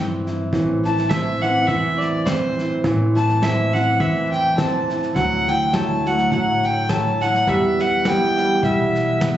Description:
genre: acoustic folk duo or small band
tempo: 104 BPM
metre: 4/4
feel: swing 55% on 8ths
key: unclear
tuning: A4 = 439 Hz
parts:
  - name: nylon-string guitar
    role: accompaniment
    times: 0.0-9.4 s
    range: E2 to E4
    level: -24 LUFS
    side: equal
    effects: none
  - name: upright bass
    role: bass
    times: 0.0-9.4 s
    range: A1 to G2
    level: -26 LUFS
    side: equal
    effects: none
  - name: soft brush drum kit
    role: drums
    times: 0.3-9.4 s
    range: kick drum, snare drum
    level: -27 LUFS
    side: left 1 dB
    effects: none
  - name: clear upright piano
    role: arpeggios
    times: 0.5-9.4 s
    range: E3 to E4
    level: -23 LUFS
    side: right 2 dB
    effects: none
  - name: warm fiddle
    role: melody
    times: 0.9-9.4 s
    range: C5 to A5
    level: -21 LUFS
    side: equal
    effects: none
room: light reverb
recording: recorded on a phone in the room, club reverb, nothing above 7.9 kHz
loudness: -17 LUFS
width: side -12 dB against mid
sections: 0.0-9.4 A section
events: none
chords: 0.0 C; 0.5 Am; 5.2 Dadd9; 7.5 Em

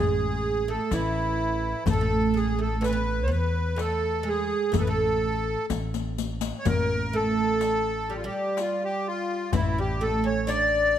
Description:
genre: Arabic maqam ensemble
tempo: 125 BPM (eighths)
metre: 10/8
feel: straight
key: A maqam suznak, A maqam hijaz from 6.7 s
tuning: A4 = 440 Hz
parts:
  - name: accordion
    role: melody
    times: 0.0-11.0 s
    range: E4 to D5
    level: -26 LUFS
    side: equal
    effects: light tremolo tuning
  - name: oud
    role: second line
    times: 0.0-11.0 s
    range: E3 to D4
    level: -29 LUFS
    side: right 4 dB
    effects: none
  - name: upright bass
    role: bass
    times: 0.0-11.0 s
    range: A1 to E2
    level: -29 LUFS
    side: equal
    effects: none
  - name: darbuka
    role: percussion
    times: 0.9-10.7 s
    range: none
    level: -30 LUFS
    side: left 5 dB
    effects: none
  - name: riq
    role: percussion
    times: 0.9-11.0 s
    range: none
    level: -35 LUFS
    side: left 10 dB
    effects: none
room: light reverb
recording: none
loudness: -23 LUFS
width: side -10 dB against mid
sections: 0.0-6.7 A section; 6.7-11.0 B section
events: drum fill 5.7-6.7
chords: none

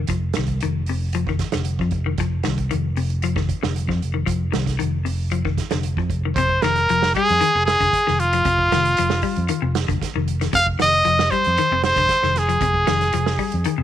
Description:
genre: afrobeat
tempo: 115 BPM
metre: 4/4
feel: straight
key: F dorian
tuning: A4 = 440 Hz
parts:
  - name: clean electric guitar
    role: arpeggios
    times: 0.0-13.8 s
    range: C3 to G3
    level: -26 LUFS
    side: left 10 dB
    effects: none
  - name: fingered electric bass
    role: bass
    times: 0.0-13.8 s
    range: F1 to F2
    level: -23 LUFS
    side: right 1 dB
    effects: none
  - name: vintage drum kit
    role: drums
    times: 0.1-13.8 s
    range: hi-hat, kick drum, snare drum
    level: -27 LUFS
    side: right 6 dB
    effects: none
  - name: bright trumpet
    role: melody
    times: 6.4-13.8 s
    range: F4 to F5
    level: -18 LUFS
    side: equal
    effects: none
room: small room ambience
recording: 1960s-style stereo with parts hard left and right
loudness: -18 LUFS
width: side -11 dB against mid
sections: 0.0-6.4 A section; 6.4-13.8 B section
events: none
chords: 0.0 F7(no3)

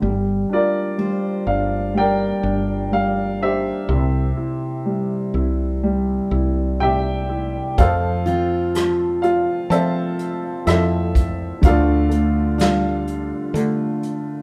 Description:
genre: acoustic folk-pop ballad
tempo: 62 BPM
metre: 4/4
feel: straight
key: F major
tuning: A4 = 440 Hz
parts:
  - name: warm upright piano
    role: melody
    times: 0.0-14.4 s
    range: C3 to A5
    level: -22 LUFS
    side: equal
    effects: none
  - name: woody fretless electric bass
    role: bass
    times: 0.0-14.4 s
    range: G1 to F3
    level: -25 LUFS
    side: equal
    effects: none
  - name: picked steel-string acoustic guitar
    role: arpeggios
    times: 1.0-2.2, 8.3-13.8 s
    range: G3 to C5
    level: -28 LUFS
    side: equal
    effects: none
  - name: soft brush drum kit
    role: drums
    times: 7.8-14.2 s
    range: hi-hat, kick drum, rim click, snare drum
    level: -21 LUFS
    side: equal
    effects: none
room: moderate large studio reverb, RT60 0.9 s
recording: band playing live in one room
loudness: -20 LUFS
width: mono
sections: 0.0-7.8 A section; 7.8-14.4 B section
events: none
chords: 0.0 Gm7; 3.9 C; 7.8 Fmaj7; 11.6 Dm

